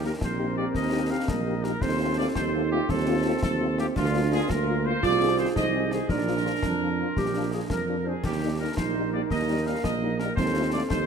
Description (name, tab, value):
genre	military-style march for wind band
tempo	112 BPM (dotted quarters)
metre	6/8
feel	straight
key	Eb major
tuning	A4 = 440 Hz
part	mellow trumpet section	melody	0.0-11.1 s	F4 to F5	-31 LUFS	left 1 dB	none
part	dark woodwind section	second line	0.0-11.1 s	D4 to D5	-35 LUFS	left 2 dB	none
part	mellow French horn section	accompaniment	0.0-10.8 s	Eb3 to Ab4	-33 LUFS	left 7 dB	none
part	warm tuba	bass	0.0-11.1 s	Bb1 to F2	-29 LUFS	right 4 dB	none
part	dark euphonium	second line	0.2-11.1 s	Bb3 to F4	-29 LUFS	right 5 dB	none
part	concert snare drum, concert bass drum and clash cymbals	drums	0.2-11.1 s	none	-32 LUFS	left 2 dB	none
room	moderate concert hall reverb, RT60 2.2 s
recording	none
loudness	-23 LUFS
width	side -6 dB against mid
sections	0.0-11.1 A section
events	none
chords	0.0 Eb; 1.8 F7/Eb; 4.0 Bb/D; 5.0 Ab/C; 6.1 Bb; 8.2 Eb; 10.4 F7/Eb